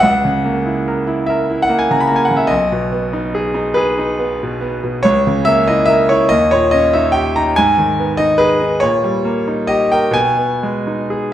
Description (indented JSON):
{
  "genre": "classical, romantic nocturne for solo piano",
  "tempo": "41-49 BPM (dotted quarters)",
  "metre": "12/8",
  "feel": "rubato",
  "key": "G# minor",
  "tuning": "A4 = 438 Hz",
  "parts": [
    { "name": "bright concert grand piano", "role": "solo", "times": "0.0-11.3 s", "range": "B1 to B5", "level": "-13 LUFS", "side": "equal", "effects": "none" }
  ],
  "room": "wet recital hall reverb, RT60 1.5 s",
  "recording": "none",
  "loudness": "-13 LUFS",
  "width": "side -11 dB against mid",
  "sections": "0.0-11.3 A section",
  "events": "none",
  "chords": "0.0 A#dim/C#; 2.5 G#m/B; 5.0 A#dim/C#; 6.3 D#7; 7.5 G#m; 8.8 D#7/A#; 10.1 G#m/B",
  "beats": "| 0.03 1.27 2.51 3.75 | 5.03 6.28 7.55 8.82 | 10.14"
}